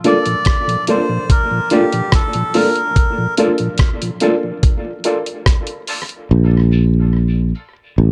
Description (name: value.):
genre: dub reggae.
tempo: 72 BPM.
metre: 4/4.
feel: straight.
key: Bb major.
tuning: A4 = 439 Hz.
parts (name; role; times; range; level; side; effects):
mellow electric guitar; accompaniment; 0.0-6.8 s; F4 to D5; -25 LUFS; equal; harmonic tremolo, high-pass filter, tape echo.
mellow tonewheel organ; accompaniment; 0.0-7.9 s; Bb2 to D4; -25 LUFS; equal; slow rotary speaker, high-pass filter, tape echo.
dark upright piano; stabs; 0.0-7.7 s; Bb3 to A4; -23 LUFS; equal; high-pass filter, tape echo.
dusty soul sampler-style drum kit; drums; 0.0-6.3 s; hi-hat, kick drum, rim click; -18 LUFS; equal; none.
melodica; melody; 0.1-3.3 s; G4 to D5; -22 LUFS; equal; tape echo.
sustaining fretless electric bass; bass; 6.3-8.1 s; A1 to Bb1; -14 LUFS; equal; none.
room: light reverb, digital ambience.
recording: dark, warm production.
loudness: -16 LUFS.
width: mono.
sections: 0.0-8.1 A section.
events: break 0.0-6.3; filter sweep 3.0-8.1; part muted 6.3-8.1.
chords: 0.0 Bbmaj7.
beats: 0.46 1.30 2.13 | 2.96 3.80 4.63 5.46 | 6.30 7.13 7.97.